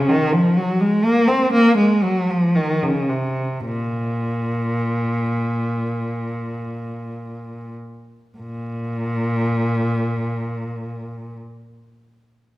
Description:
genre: classical, baroque-style suite movement for unaccompanied cello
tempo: 47-64 BPM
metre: 4/4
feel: rubato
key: Bb minor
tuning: A4 = 439 Hz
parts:
  - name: dark cello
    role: solo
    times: 0.0-11.4 s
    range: Bb2 to C4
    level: -19 LUFS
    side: equal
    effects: none
room: wet recital hall reverb, RT60 1.6 s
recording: recorded in a church or concert hall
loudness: -18 LUFS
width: side -17 dB against mid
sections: 0.0-8.4 A section; 8.4-12.6 B section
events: slowing down 0.0-8.4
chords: none

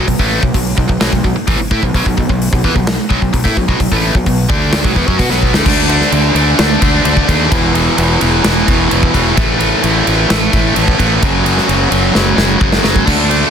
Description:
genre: hard rock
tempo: 129 BPM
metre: 4/4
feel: straight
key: B minor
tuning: A4 = 440 Hz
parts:
  - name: biting overdriven guitar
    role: riff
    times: 0.0-13.5 s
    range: E2 to F#4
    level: -13 LUFS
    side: equal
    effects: none
  - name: fuzz fingered electric bass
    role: bass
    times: 0.0-13.4 s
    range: E1 to B2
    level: -16 LUFS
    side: equal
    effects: overdrive
  - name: big rock drum kit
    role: drums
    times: 0.1-13.4 s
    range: crash cymbal, hi-hat, kick drum, ride cymbal, snare drum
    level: -15 LUFS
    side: equal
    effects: none
room: little or no reverb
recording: dense, heavily limited modern master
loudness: -10 LUFS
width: side -8 dB against mid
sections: 0.0-5.7 A section; 5.7-13.5 B section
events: drum fill 5.4, 12.1-13.1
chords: 0.0 Bm; 5.7 D5; 7.5 E5; 9.4 A5; 11.2 F#5

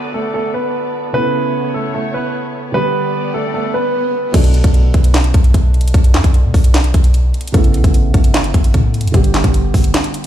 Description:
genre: hip hop, trap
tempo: 150 BPM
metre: 4/4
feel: half-time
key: B minor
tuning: A4 = 440 Hz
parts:
  - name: warm concert grand piano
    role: melody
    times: 0.0-4.3 s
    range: A3 to B4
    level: -19 LUFS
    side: right 1 dB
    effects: low-pass filter, ping-pong delay
  - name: felt-muted upright piano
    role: accompaniment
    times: 0.0-10.3 s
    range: B2 to G4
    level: -22 LUFS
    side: right 3 dB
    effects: low-pass filter
  - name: muted studio string section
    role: sustained chords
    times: 0.0-4.3 s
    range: B3 to D5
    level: -27 LUFS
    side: left 3 dB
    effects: none
  - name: downlifter and swell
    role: sound effects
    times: 0.0-4.3 s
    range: none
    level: -29 LUFS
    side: equal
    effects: none
  - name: clean 808-style bass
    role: bass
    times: 4.3-9.9 s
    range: G1 to B2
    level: -13 LUFS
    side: equal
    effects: none
  - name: trap drum kit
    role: drums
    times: 4.3-10.3 s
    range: crash cymbal, handclaps, hi-hat, kick drum, snare drum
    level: -13 LUFS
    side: equal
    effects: none
room: little or no reverb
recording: played on a big sound system in a bare room, large studio reverb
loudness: -12 LUFS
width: side -11 dB against mid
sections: 0.0-4.3 A section; 4.3-10.3 B section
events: swell 2.7-4.3; break 9.9-10.3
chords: 0.0 Bm7; 1.1 Aadd9; 2.7 G; 4.3 Bm7; 7.5 Aadd9; 9.1 G

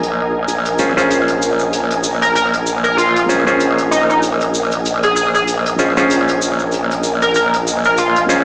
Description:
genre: glitch hop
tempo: 96 BPM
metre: 4/4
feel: swing 58% on 16ths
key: Bb minor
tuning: A4 = 440 Hz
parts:
  - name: growl bass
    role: bass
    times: 0.0-8.4 s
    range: Bb1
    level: -18 LUFS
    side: equal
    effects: chorus, tube saturation
  - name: hi-hat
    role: drums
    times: 0.0-8.3 s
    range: none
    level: -27 LUFS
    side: left 1 dB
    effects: none
  - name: granular cloud pad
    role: texture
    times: 0.0-8.4 s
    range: Bb4 to Ab5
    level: -21 LUFS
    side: equal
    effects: built-in reverb
  - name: tube shaker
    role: percussion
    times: 0.5-8.4 s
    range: none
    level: -26 LUFS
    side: equal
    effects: none
  - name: overdriven clav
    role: stabs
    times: 0.8-8.4 s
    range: Db4 to C5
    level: -17 LUFS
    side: equal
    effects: vintage 12-bit sampler grit, dub echo
  - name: sync lead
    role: melody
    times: 2.2-8.2 s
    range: Eb4 to Bb4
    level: -15 LUFS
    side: equal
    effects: ensemble chorus, dub echo
room: moderate plate reverb, RT60 2.0 s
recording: played on a big sound system in a bare room, large studio reverb, small speaker sound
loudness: -12 LUFS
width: side -27 dB against mid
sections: 0.0-8.4 A section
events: none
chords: 0.0 Bbm9

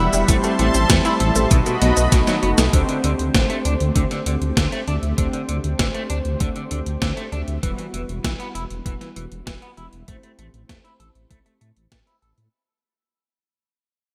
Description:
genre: synthwave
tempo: 98 BPM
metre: 4/4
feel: straight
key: unclear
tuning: A4 = 440 Hz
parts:
  - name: warm analog pad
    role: sustained chords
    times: 0.0-2.7 s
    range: G3 to C6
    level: -26 LUFS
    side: equal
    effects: chorus, sidechain pumping
  - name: analog pluck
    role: arpeggios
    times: 0.0-2.7 s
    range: D#3 to E4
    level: -30 LUFS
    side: equal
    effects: none
  - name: electric guitar at the edge of break-up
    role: riff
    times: 0.0-12.3 s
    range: B2 to A4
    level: -30 LUFS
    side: equal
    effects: analog chorus, low-pass filter, delay
  - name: mellow synth brass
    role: stabs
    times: 0.0-12.5 s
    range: G3 to E5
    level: -28 LUFS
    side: equal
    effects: chorus, cassette tape, delay
  - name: dark detuned saw bass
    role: bass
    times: 0.0-12.5 s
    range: E1 to A2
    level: -25 LUFS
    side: equal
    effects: none
  - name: gated 80s digital drum machine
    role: drums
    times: 0.1-12.5 s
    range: hi-hat, shaker, snare drum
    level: -26 LUFS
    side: equal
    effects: gated reverb, gated reverb snare
  - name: electronic kick drum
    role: drums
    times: 0.3-12.0 s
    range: none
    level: -23 LUFS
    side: equal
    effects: overdrive
room: moderate plate reverb, RT60 3.7 s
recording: bright 1980s-style digital production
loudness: -20 LUFS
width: mono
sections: 0.0-2.7 A section; 2.7-12.5 B section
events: drum fill 2.1-2.7; fade-out 2.7-12.5; filter sweep on analog polysynth 2.7-12.5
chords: 0.3 Am7; 1.5 B7; 2.7 D7sus4; 7.6 Emadd9; 10.1 Am7

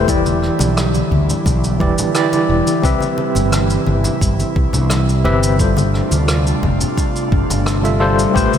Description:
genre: sunset chillout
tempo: 87 BPM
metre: 4/4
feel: straight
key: unclear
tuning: A4 = 439 Hz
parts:
  - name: overdriven tine electric piano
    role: accompaniment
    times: 0.0-8.6 s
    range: E3 to E5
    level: -18 LUFS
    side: moving between left 5 dB and right 5 dB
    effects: fast tremolo, auto-pan, ping-pong delay
  - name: airy breathy pad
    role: sustained chords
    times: 0.0-8.6 s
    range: C3 to F4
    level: -20 LUFS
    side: equal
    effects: chorus
  - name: mellow fretless electric bass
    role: bass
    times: 0.0-8.5 s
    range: E1 to D2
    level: -17 LUFS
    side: equal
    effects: none
  - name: cabasa and rim click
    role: drums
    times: 0.1-8.6 s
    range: none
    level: -25 LUFS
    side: equal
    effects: gated reverb
  - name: electronic kick drum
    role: drums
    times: 0.1-8.5 s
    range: none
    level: -19 LUFS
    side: equal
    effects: none
  - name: congas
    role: percussion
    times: 0.1-8.6 s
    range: none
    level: -25 LUFS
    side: left 2 dB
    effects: none
room: light reverb, small room ambience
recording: bright 1980s-style digital production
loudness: -13 LUFS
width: side -9 dB against mid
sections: 0.0-8.6 A section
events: none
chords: 0.1 Em7; 2.8 Cmaj7; 5.6 G9sus4

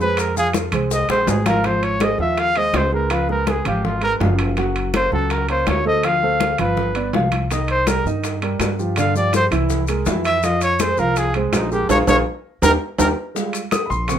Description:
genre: Afro-Cuban jazz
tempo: 164 BPM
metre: 4/4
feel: straight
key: Ab major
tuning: A4 = 440 Hz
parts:
  - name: breathy trumpet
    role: melody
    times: 0.0-13.1 s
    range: C4 to F5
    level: -20 LUFS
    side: equal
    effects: none
  - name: dark baby grand piano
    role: accompaniment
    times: 0.0-14.2 s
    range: Db3 to Eb6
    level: -22 LUFS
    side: right 2 dB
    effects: none
  - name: upright bass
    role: bass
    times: 0.0-14.2 s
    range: Gb1 to G2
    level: -23 LUFS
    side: equal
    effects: none
  - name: congas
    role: percussion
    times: 0.0-14.2 s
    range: none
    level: -27 LUFS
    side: left 2 dB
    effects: none
  - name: maracas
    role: percussion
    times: 0.0-1.6, 7.5-14.2 s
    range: none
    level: -31 LUFS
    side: left 7 dB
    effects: none
  - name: bongos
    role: percussion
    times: 0.2-14.2 s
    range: none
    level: -29 LUFS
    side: left 6 dB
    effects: none
  - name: timbales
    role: percussion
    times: 0.2-14.2 s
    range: none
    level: -25 LUFS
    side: right 3 dB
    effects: none
room: light reverb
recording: minimal, uncompressed stereo recording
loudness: -16 LUFS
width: side -9 dB against mid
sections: 0.0-1.6 A section; 1.6-13.4 A section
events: trumpet solo 0.0-13.4; drum fill 0.9-1.6, 12.8-13.4; band accent 11.9-13.4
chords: 0.0 Fm; 1.6 Ab6; 3.1 Db7; 4.6 Gb; 6.0 Dm7; 6.8 G7; 7.5 Cm7; 9.0 G7sus4; 9.7 Caug7; 10.4 Fm; 11.9 Bbm7; 12.6 Eb; 13.4 Fmadd9

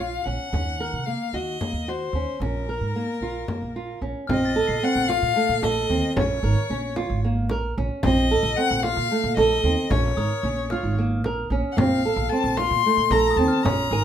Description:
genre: contemporary instrumental, chamber music in an uneven meter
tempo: 224 BPM (eighths)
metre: 7/8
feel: straight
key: Bb minor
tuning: A4 = 442 Hz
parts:
  - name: clear violin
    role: melody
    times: 0.0-14.0 s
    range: Bb4 to C6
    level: -26 LUFS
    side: left 7 dB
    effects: none
  - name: flamenco guitar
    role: arpeggios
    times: 0.0-14.0 s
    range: A3 to Bb4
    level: -24 LUFS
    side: right 2 dB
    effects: none
  - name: upright bass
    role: bass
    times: 0.0-14.0 s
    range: Ab1 to C3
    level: -26 LUFS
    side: right 2 dB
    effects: none
  - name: frame drum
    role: percussion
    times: 0.0-13.9 s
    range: none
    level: -28 LUFS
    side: left 2 dB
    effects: none
  - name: glockenspiel with soft plastic mallets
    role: texture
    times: 4.3-5.9, 10.2-14.0 s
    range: Ab5 to C7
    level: -35 LUFS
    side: left 4 dB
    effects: none
room: moderate studio reverb, RT60 0.5 s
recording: none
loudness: -20 LUFS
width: side -9 dB against mid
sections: 0.0-4.3 A section; 4.3-14.0 B section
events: none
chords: 0.0 Bbm; 0.5 Ebm7; 2.4 Bbm; 4.3 F7/Bb; 6.2 Bbm7; 8.0 F7/Bb; 9.9 Bbm7; 11.8 F7/Bb

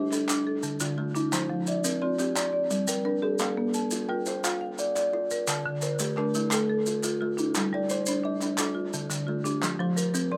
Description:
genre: southern african traditional, mbira-style interlocking cycle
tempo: 116 BPM (dotted quarters)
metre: 12/8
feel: straight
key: G equiheptatonic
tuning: A4 = 439 Hz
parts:
  - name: kalimba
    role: arpeggios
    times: 0.0-10.4 s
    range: D3 to G5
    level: -31 LUFS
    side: equal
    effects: none
  - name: marimba with medium hard mallets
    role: arpeggios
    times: 0.0-10.4 s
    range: D3 to A5-29c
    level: -32 LUFS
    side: equal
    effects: none
  - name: group handclap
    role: percussion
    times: 0.1-9.8 s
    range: none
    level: -37 LUFS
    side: equal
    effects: none
  - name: maracas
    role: percussion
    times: 0.1-10.3 s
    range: none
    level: -36 LUFS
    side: equal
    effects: none
room: little or no reverb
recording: recorded outdoors, with no room sound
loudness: -28 LUFS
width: mono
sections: 0.0-7.6 A section; 7.6-10.4 B section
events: none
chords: 0.3 Dm; 1.3 F5; 2.4 Gm; 3.4 Bb; 5.5 Dm; 7.6 G5; 8.6 Dm; 9.6 F5

